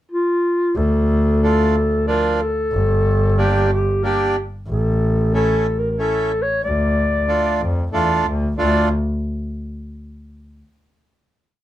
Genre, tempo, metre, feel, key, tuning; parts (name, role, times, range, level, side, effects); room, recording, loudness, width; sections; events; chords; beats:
klezmer; 92 BPM; 3/4; straight; D harmonic minor; A4 = 439 Hz
breathy clarinet; melody; 0.1-8.9 s; F4 to D5; -20 LUFS; left 1 dB
clear double bass; bass; 0.8-8.9 s; G1 to F2; -19 LUFS; equal
accordion; accompaniment; 1.4-8.9 s; F3 to G4; -20 LUFS; right 3 dB
light reverb; dark, warm production; -16 LUFS; side -13 dB against mid
0.0-0.8 pickup bar; 0.8-8.6 A section; 8.6-10.5 final chord
0.0 N.C.; 0.8 Dm; 2.7 Gm; 4.7 A; 6.6 Dm
0.10 | 0.76 1.42 2.07 | 2.73 3.38 4.03 | 4.69 5.34 5.99 | 6.64 7.29 7.94 | 8.59